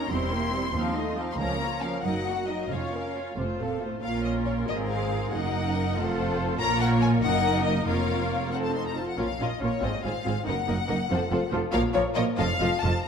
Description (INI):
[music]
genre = quick classical-period movement for string orchestra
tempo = 93 BPM (dotted quarters)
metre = 6/8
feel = rubato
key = Bb minor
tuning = A4 = 441 Hz
[part]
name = clear studio violin section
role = melody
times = 0.0-13.1 s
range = Db5 to C6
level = -31 LUFS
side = left 6 dB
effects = none
[part]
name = clear symphonic violin section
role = second line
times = 0.0-12.9 s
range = Eb4 to Gb5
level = -33 LUFS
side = left 2 dB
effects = none
[part]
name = rich symphonic viola section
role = accompaniment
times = 0.0-12.9 s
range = F3 to A4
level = -30 LUFS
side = equal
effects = none
[part]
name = rich symphonic cello section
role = bass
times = 0.1-12.9 s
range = Db2 to C3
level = -31 LUFS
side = right 3 dB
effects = none
[part]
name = rich symphonic double bass section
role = bass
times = 0.1-12.9 s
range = E1 to Eb2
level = -32 LUFS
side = right 2 dB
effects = none
[sound]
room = moderate concert hall reverb, RT60 1.9 s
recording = dark, warm production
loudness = -24 LUFS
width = side -7 dB against mid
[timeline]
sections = 0.0-4.0 A section; 4.0-13.1 B section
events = none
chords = 0.1 C7/E; 0.8 F7/Eb; 1.4 Bbm/Db; 2.0 Ebm/Gb; 2.7 Bbm/F; 3.4 F; 4.0 Bbm; 4.7 Fm/Ab; 5.3 Ebm/Gb; 6.0 F; 6.6 Bbm; 7.2 Ebm/Gb; 7.9 Bbm/F; 8.5 F; 9.2 Bbm; 9.8 Fm/Ab; 10.5 Ebm/Gb; 11.1 F; 11.7 Bbm; 12.4 F7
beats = | 0.12 0.75 | 1.39 2.04 | 2.71 3.37 | 4.04 4.69 | 5.33 5.96 | 6.60 7.24 | 7.88 8.53 | 9.19 9.84 | 10.47 11.11 | 11.74 12.39 | 13.07